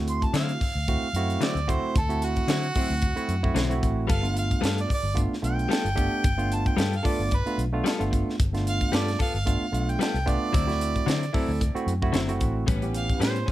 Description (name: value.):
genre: straight-eighth soul blues.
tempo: 112 BPM.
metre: 4/4.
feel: swing 55% on 16ths.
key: unclear.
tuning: A4 = 440 Hz.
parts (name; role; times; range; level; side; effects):
barky tine electric piano; accompaniment; 0.0-13.5 s; A3 to A4; -30 LUFS; right 3 dB; none.
vintage muted fingered electric bass; bass; 0.0-13.4 s; F#1 to D3; -28 LUFS; equal; none.
clear harmonica; second line; 0.1-13.5 s; F#4 to C6; -31 LUFS; right 3 dB; overdrive.
tight funk drum kit; drums; 0.1-13.5 s; hi-hat, kick drum, snare drum; -27 LUFS; equal; none.
direct-recorded clean electric guitar; stabs; 0.3-13.5 s; A2 to A4; -31 LUFS; left 5 dB; digital delay.
muted studio string section; sustained chords; 12.7-13.5 s; C#4 to B4; -39 LUFS; equal; none.
room: light reverb.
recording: none.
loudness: -23 LUFS.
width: side -14 dB against mid.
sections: 0.0-13.5 A section.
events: harmonica solo 0.0-13.5.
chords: 0.0 D9; 4.1 G9; 10.5 D9; 12.7 A9.